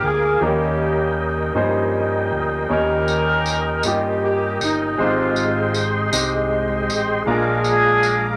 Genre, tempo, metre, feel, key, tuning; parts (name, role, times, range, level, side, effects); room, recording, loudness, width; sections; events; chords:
slow gospel; 52 BPM (dotted quarters); 6/8; straight; A4 = 441 Hz
dark horn section; melody; 0.0-8.4 s; Bb3 to Bb4; -23 LUFS; equal
clear grand piano; accompaniment; 0.0-8.4 s; Ab2 to Eb5; -24 LUFS; equal
tonewheel organ; sustained chords; 0.0-8.4 s; Ab3 to D6; -26 LUFS; equal; slow rotary speaker, chorus vibrato
fingered electric bass; bass; 0.0-8.4 s; G1 to G2; -29 LUFS; equal
tambourine; percussion; 3.1-8.4 s; -28 LUFS; equal
wet small room ambience, RT60 0.5 s; -19 LUFS; mono
0.0-8.4 A section
0.4 Eb7; 5.0 Abmaj7; 7.3 Bb7